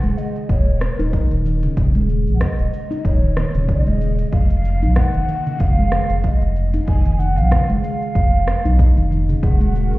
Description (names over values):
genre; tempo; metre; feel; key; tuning
organic downtempo; 94 BPM; 4/4; swing 56% on 16ths; Eb minor; A4 = 440 Hz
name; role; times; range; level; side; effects
breathy mellow ney; melody; 0.0-10.0 s; Bb4 to Ab5; -26 LUFS; right 2 dB; ping-pong delay
handpan; arpeggios; 0.0-10.0 s; Db3 to Eb4; -22 LUFS; equal; ping-pong delay
warm sub bass; bass; 0.0-10.0 s; Eb1 to Cb2; -18 LUFS; equal; none
deep house drum kit; drums; 0.0-10.0 s; hi-hat, rim click, shaker; -30 LUFS; equal; none
electronic kick drum; drums; 0.5-9.6 s; none; -18 LUFS; equal; none
airy breathy pad; sustained chords; 9.6-10.0 s; Eb3 to Bb4; -35 LUFS; equal; chorus, sidechain pumping
bronze singing bowl; texture; 9.4-10.0 s; Ab4; -32 LUFS; right 1 dB; none
room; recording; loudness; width
light reverb, digital ambience; heard muffled through a wall, stone room reverb, EQ; -15 LUFS; side -18 dB against mid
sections
0.0-10.0 A section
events
none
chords
0.0 Eb7(no3); 4.3 Fm7; 9.4 Ebm7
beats
0.50 1.13 | 1.77 2.41 3.05 3.69 | 4.33 4.96 5.60 6.24 | 6.88 7.52 8.15 8.79 | 9.43